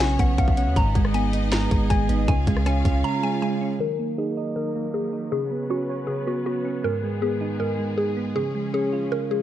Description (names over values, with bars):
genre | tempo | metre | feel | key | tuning
hip hop, trap | 158 BPM | 4/4 | half-time | Eb minor | A4 = 435 Hz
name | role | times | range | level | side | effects
mallet-like synth pluck | melody | 0.0-9.4 s | F#4 to Bb5 | -27 LUFS | left 1 dB | chorus, phaser, low-pass filter
soft electric-piano-like synth keys | accompaniment | 0.0-9.4 s | Ab2 to Eb5 | -26 LUFS | right 2 dB | chorus, low-pass filter
bright studio string section | sustained chords | 0.0-9.4 s | Eb3 to F5 | -33 LUFS | left 1 dB | low-pass filter
long sustained 808-style bass | bass | 0.0-3.0 s | Ab1 to Eb2 | -23 LUFS | equal | none
trap drum kit | drums | 0.0-2.9 s | hi-hat, kick drum, rim click, snare drum | -23 LUFS | equal | vintage 12-bit sampler grit
soft octave-layered synth lead | second line | 0.4-2.3 s | Eb5 to Ab5 | -36 LUFS | left 2 dB | chorus, phaser, tape echo
room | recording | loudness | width
light reverb, digital ambience | dark, warm production | -21 LUFS | side -12 dB against mid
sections
0.0-3.8 A section; 3.8-9.4 B section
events
break 3.0-3.8; filter sweep 3.8-9.4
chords
0.0 Bsus2; 0.8 Abm; 2.3 Db; 3.8 Ebm; 5.3 Bsus2; 6.8 Abm; 8.4 Db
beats
0.00 0.38 | 0.76 1.14 1.52 1.90 | 2.28 2.66 3.04 3.42 | 3.80 4.18 4.56 4.94 | 5.32 5.70 6.08 6.46 | 6.84 7.22 7.60 7.98 | 8.36 8.74 9.12